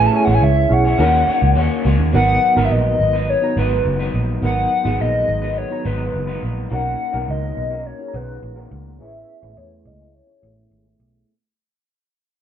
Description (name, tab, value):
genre	indie pop, bedroom pop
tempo	105 BPM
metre	4/4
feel	straight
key	G# minor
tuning	A4 = 441 Hz
part	warbly nostalgic lead	melody	0.0-11.0 s	B4 to A5	-19 LUFS	left 1 dB	chorus, phaser, low-pass filter
part	electric guitar through a small old amp	accompaniment	0.0-11.3 s	G#2 to C#5	-25 LUFS	left 2 dB	vibrato effect, low-pass filter
part	reed electric piano	accompaniment	0.0-11.3 s	B3 to A#5	-25 LUFS	right 4 dB	fast tremolo, low-pass filter
part	vintage muted picked electric bass	bass	0.0-11.2 s	F#1 to E2	-19 LUFS	equal	none
room	moderate studio reverb, RT60 0.7 s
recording	band playing live in one room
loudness	-15 LUFS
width	side -9 dB against mid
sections	0.0-2.1 A section; 2.1-11.3 B section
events	fade-out 2.1-11.3; filter sweep 2.1-11.3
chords	0.0 Amaj9; 1.0 D#m7; 2.1 G#m7; 6.7 Bmaj9; 9.0 Amaj9